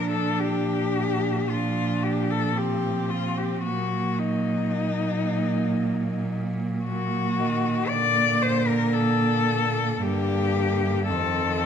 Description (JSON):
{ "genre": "classical, lyrical piece for cello ensemble", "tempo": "56 BPM", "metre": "4/4", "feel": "rubato", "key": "Bb major", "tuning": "A4 = 440 Hz", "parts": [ { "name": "rich cello", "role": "melody", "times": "0.0-11.7 s", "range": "Eb4 to D5", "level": "-26 LUFS", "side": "left 7 dB", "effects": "none" }, { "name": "rich cello", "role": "second line", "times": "0.0-11.7 s", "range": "Bb3 to D4", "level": "-29 LUFS", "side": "right 5 dB", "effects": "none" }, { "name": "clear cello", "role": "accompaniment", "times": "0.0-11.7 s", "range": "D3 to Gb3", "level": "-30 LUFS", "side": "equal", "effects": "none" }, { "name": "rich cello", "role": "bass", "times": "0.0-11.7 s", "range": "F2 to Bb2", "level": "-28 LUFS", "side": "right 2 dB", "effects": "none" } ], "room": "moderate recital hall reverb, RT60 1.7 s", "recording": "none", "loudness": "-22 LUFS", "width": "side -8 dB against mid", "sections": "0.0-11.7 A section", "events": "none", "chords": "0.0 Bb; 3.7 Ebm/Bb; 7.9 Bb; 10.0 Gm; 11.1 F7" }